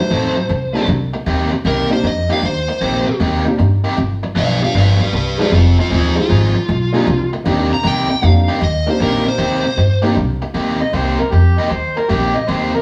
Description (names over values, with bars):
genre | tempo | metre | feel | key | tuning
blues | 155 BPM | 4/4 | swing 67% on 8ths | C minor | A4 = 440 Hz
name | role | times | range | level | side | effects
overdriven slide guitar | melody | 0.0-10.0 s | C4 to Bb5 | -22 LUFS | equal | none
honky-tonk upright piano | accompaniment | 0.0-10.2 s | G3 to G4 | -23 LUFS | equal | none
biting overdriven guitar | riff | 0.1-12.8 s | G2 to A4 | -22 LUFS | equal | none
upright bass | bass | 0.1-12.7 s | F1 to G2 | -19 LUFS | equal | none
overdriven harmonica | second line | 10.8-12.8 s | G4 to Eb5 | -21 LUFS | equal | none
room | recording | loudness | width
moderate stone room reverb, RT60 1.0 s | band playing live in one room, small room ambience | -16 LUFS | mono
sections
0.0-10.2 A section; 10.2-12.8 A section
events
electric slide guitar solo 0.0-10.2; harmonica solo 10.2-12.8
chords
0.0 F#dim7; 0.9 Cm7; 4.0 G7; 5.5 Fm7; 7.1 Cm7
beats
0.11 0.49 | 0.88 1.26 1.65 2.04 | 2.42 2.81 3.20 3.59 | 3.97 4.36 4.75 5.13 | 5.52 5.91 6.29 6.68 | 7.07 7.46 7.84 8.23 | 8.62 9.00 9.39 9.78 | 10.16 10.55 10.94 11.33 | 11.71 12.10 12.49